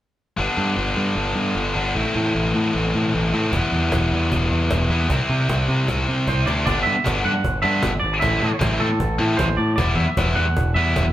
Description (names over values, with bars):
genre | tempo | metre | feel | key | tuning
indie rock | 153 BPM | 4/4 | straight | G major | A4 = 440 Hz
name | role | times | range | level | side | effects
high-gain distorted guitar | riff | 0.4-11.0 s | G2 to E4 | -22 LUFS | left 2 dB | distortion
growling picked electric bass | bass | 0.4-11.1 s | E1 to C3 | -22 LUFS | equal | overdrive
cajon | drums | 3.5-11.1 s | none | -27 LUFS | equal | none
twangy electric guitar | melody | 6.3-11.1 s | A4 to F#5 | -24 LUFS | right 2 dB | none
room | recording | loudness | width
moderate stone room reverb, RT60 1.2 s | band playing live in one room | -18 LUFS | side -13 dB against mid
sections
0.4-6.7 A section; 6.7-11.1 B section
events
drum fill 6.3-6.7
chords
0.4 G; 2.0 Am; 3.5 Em; 5.1 C; 6.7 G; 8.2 Am; 9.8 Emadd9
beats
| 0.38 0.77 1.17 1.56 | 1.95 2.35 2.74 3.13 | 3.53 3.92 4.31 4.71 | 5.10 5.49 5.88 6.27 | 6.67 7.06 7.45 7.84 | 8.23 8.62 9.01 9.40 | 9.79 10.18 10.57 10.96